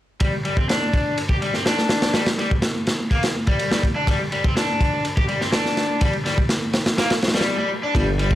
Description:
breakbeat, breaks; 124 BPM; 4/4; straight; G minor; A4 = 440 Hz
overdriven semi-hollow guitar; riff; 0.2-8.3 s; G3 to G4; -23 LUFS; left 1 dB; tube saturation, low-pass filter, ping-pong delay
crunchy breakbeat drum kit; drums; 0.2-8.3 s; kick drum, ride cymbal, snare drum; -20 LUFS; equal
phased detuned saw bass; bass; 7.9-8.3 s; G1; -21 LUFS; equal; phaser
light reverb, studio reverb; vinyl crackle, faint mains hum; -18 LUFS; side -13 dB against mid
0.2-8.0 A section
break 7.5-8.0
0.2 G5

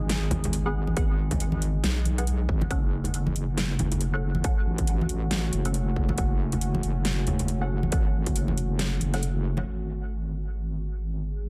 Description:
deep dubstep; 138 BPM; 4/4; swing 58% on 16ths, half-time; A4 = 436 Hz
deep dark ambient pad; sustained chords; 0.0-11.5 s; G#3 to G#4; -38 LUFS; equal; chorus, built-in reverb
wobble bass; bass; 0.0-11.5 s; F#1 to B1; -30 LUFS; equal; chorus
dubstep drum kit; drums; 0.1-9.3 s; hi-hat, snare drum; -34 LUFS; equal; small room reverb
congas; percussion; 0.3-9.6 s; -35 LUFS; equal
filtered dub chord stab; stabs; 0.7-9.2 s; B3 to F#5; -40 LUFS; equal; phaser, lush chorus, dub echo
electronic kick drum; drums; 1.0-8.3 s; -28 LUFS; equal; distortion, small room reverb
digital ambience; dense, heavily limited modern master; -27 LUFS; mono
0.0-9.7 A section; 9.7-11.5 B section
drop 0.0-9.7; kick drops out 9.2-9.7
0.0 G#m7; 2.7 F#m; 9.7 G#5

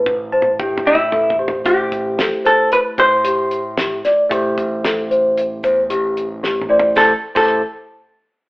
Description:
progressive instrumental, band music in an uneven meter; 113 BPM; 5/4; straight; A minor; A4 = 440 Hz
vintage hollow-body jazz guitar; melody; 0.0-7.6 s; E4 to C5; -14 LUFS; equal
barky tine electric piano; accompaniment; 0.0-7.6 s; A3 to A5; -24 LUFS; right 1 dB
large celesta; arpeggios; 0.0-7.6 s; G4 to D5; -17 LUFS; equal
overdriven picked electric bass; bass; 0.0-7.6 s; A1 to A2; -32 LUFS; equal
damped 70s drum kit; drums; 0.1-7.5 s; crash cymbal, hi-hat, kick drum, snare drum, toms; -24 LUFS; equal
tube shaker; percussion; 1.7-7.6 s; -44 LUFS; right 1 dB
moderate studio reverb, RT60 0.8 s; band playing live in one room, telephone sound; -14 LUFS; side -22 dB against mid
0.0-1.7 A section; 1.7-7.0 B section; 7.0-8.5 C section
drum fill 0.0-1.7, 6.4-7.0; tine electric piano fill 0.1-1.7
0.0 Amadd9; 1.7 Am7

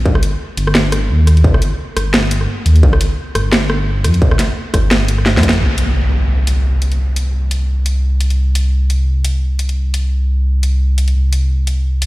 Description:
half-time drum and bass; 173 BPM; 4/4; swing 56% on 16ths, half-time; C minor; A4 = 442 Hz
dark detuned saw bass; bass; 0.0-12.1 s; G1 to F2; -13 LUFS; equal
electronic kick drum; drums; 0.1-5.5 s; -14 LUFS; equal; distortion, studio ambience
drum and bass drum kit; drums; 0.2-12.1 s; hi-hat, rim click, snare drum; -18 LUFS; equal; overdrive, studio ambience
impact; sound effects; 5.6-7.0 s; -21 LUFS; equal
light reverb, digital ambience; played on a big sound system in a bare room, stone room reverb; -12 LUFS; side -18 dB against mid
0.0-5.6 A section; 5.6-12.1 B section
drum fill 5.3-5.6; band accent 5.5; impact 5.6-7.0

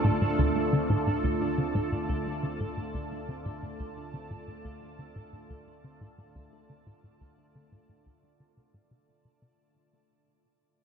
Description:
ambient, sequencer-driven space music; 88 BPM; 4/4; straight; D minor; A4 = 440 Hz
evolving wavetable pad; sustained chords; 0.0-9.6 s; D3 to A5; -32 LUFS; right 2 dB; phaser, built-in reverb
semi-hollow electric guitar; arpeggios; 0.0-9.5 s; D3 to D5; -40 LUFS; right 2 dB; auto-pan, tape echo
tight sequencer bass; riff; 0.0-9.5 s; D2 to D3; -29 LUFS; equal; tape echo
warm sub bass; bass; 0.0-9.6 s; D2; -46 LUFS; equal; tube saturation
bubbling stepped-filter texture; texture; 0.0-9.6 s; A4; -38 LUFS; equal; chorus, built-in reverb
wet huge ambient reverb, RT60 8.1 s; dark, warm production; -27 LUFS; side -7 dB against mid
0.0-9.6 A section
fade-out on clean electric guitar 0.0-9.6; fade-out on sub bass 0.0-9.6; fade-out 0.0-9.6; filter sweep on analog synth bass 0.0-9.6
0.0 Dm

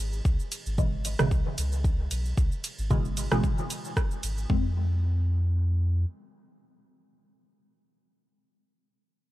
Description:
dub techno; 113 BPM; 4/4; swing 54% on 16ths; F minor; A4 = 436 Hz
soft dub sub bass; bass; 0.0-6.1 s; Ab1 to F2; -27 LUFS; equal; sidechain pumping
punchy analog drum machine; drums; 0.1-4.5 s; hi-hat, ride cymbal, rim click, shaker; -34 LUFS; right 2 dB
electronic kick drum; drums; 0.3-4.6 s; -26 LUFS; equal
filtered dub chord stab; stabs; 0.8-7.6 s; Cb3 to C4; -31 LUFS; equal; phaser, sidechain pumping, dub echo
little or no reverb; -25 LUFS; side -16 dB against mid
0.0-4.5 A section; 4.5-8.7 B section
0.0 Dbm7; 4.5 Fm7

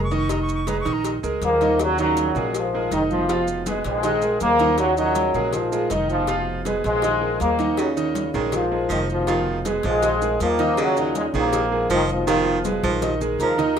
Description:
latin, salsa; 160 BPM; 4/4; straight; A4 = 443 Hz
bright silver concert flute; melody; 0.0-1.1 s; Bb5 to Db6; -30 LUFS; right 4 dB
clear concert grand piano; accompaniment; 0.0-13.7 s; Eb3 to F5; -25 LUFS; right 4 dB
upright bass; bass; 0.0-13.8 s; F1 to Eb2; -29 LUFS; equal
maracas; percussion; 0.1-13.8 s; -40 LUFS; right 8 dB
congas; percussion; 0.3-13.7 s; -33 LUFS; left 3 dB
cowbell; percussion; 0.3-13.8 s; -32 LUFS; left 8 dB
warm trombone section; melody; 1.4-13.8 s; Ab2 to Bb4; -22 LUFS; left 1 dB
warm baritone saxophone; second line; 7.8-13.6 s; Db3 to F3; -25 LUFS; right 4 dB
wet studio ambience, RT60 0.5 s; rough home demo mix; -19 LUFS; side -8 dB against mid
0.0-1.8 A section; 1.8-13.8 B section
flute solo 0.0-1.8; drum fill 12.6-13.8
0.3 Fm7b5; 1.1 Bb7sus4; 1.8 Ebm7; 2.5 Fm7b5; 4.0 Bb7sus4; 5.5 Fm7b5; 7.0 Bb7sus4; 8.5 Fm7b5; 10.0 Bb7sus4; 11.5 Fm7b5; 13.0 Bb7sus4

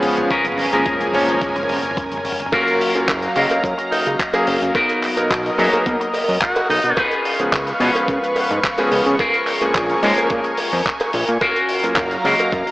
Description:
nu-disco, nu disco; 108 BPM; 4/4; straight; F# major; A4 = 440 Hz
clear electric grand piano; accompaniment; 0.0-12.7 s; E#3 to E#5; -22 LUFS; equal; sidechain pumping, tape echo
lush unison pad; sustained chords; 0.0-12.7 s; F#3 to C#6; -23 LUFS; equal; chorus, sidechain pumping
damped 70s drum kit; drums; 0.0-12.7 s; cabasa, crash cymbal, handclaps, hi-hat, toms; -25 LUFS; equal
electric guitar with an envelope filter; riff; 0.3-12.7 s; B3 to C#5; -22 LUFS; left 1 dB; wide subtle chorus, tape echo
electronic kick drum; drums; 0.3-12.6 s; -28 LUFS; equal
cowbell; percussion; 2.5-12.5 s; -26 LUFS; right 1 dB
fat analog bass; bass; 3.0-12.6 s; F#1 to C#3; -22 LUFS; equal
warm tenor saxophone; melody; 3.9-7.0 s; D#4 to G#4; -23 LUFS; equal; analog delay
wet lush hall reverb, RT60 2.3 s; dreamy mix soaked in reverb, AM radio sound; -16 LUFS; side -18 dB against mid
0.0-2.5 A section; 2.5-12.7 B section
build-up 0.0-2.5; drum fill 0.0-2.5; filter sweep on clean electric guitar 0.0-2.5; drop 2.5-12.7
0.3 A#m7; 2.5 F#maj7; 4.8 Bmaj7; 7.0 C#7; 9.2 A#m7; 11.4 F#maj7

